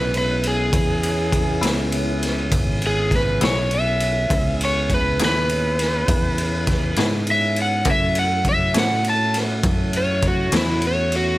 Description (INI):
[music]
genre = slow blues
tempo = 67 BPM (dotted quarters)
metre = 12/8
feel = straight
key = C# minor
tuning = A4 = 440 Hz
[part]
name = overdriven slide guitar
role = melody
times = 0.0-11.4 s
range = E4 to A5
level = -22 LUFS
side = equal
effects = none
[part]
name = clean electric guitar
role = accompaniment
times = 0.0-10.7 s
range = F#2 to E4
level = -26 LUFS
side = left 4 dB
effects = tremolo
[part]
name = tonewheel organ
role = sustained chords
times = 0.0-11.4 s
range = G#3 to G#4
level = -29 LUFS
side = right 1 dB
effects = slow rotary speaker
[part]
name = fingered electric bass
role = bass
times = 0.0-11.4 s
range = G#1 to A2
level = -23 LUFS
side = equal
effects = none
[part]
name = raw garage drum kit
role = drums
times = 0.1-11.3 s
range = kick drum, ride cymbal, snare drum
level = -22 LUFS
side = equal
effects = none
[sound]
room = little or no reverb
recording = none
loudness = -17 LUFS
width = side -16 dB against mid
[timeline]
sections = 0.0-11.4 A section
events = electric slide guitar solo 0.0-11.4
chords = 0.0 C#m7; 7.9 F#m7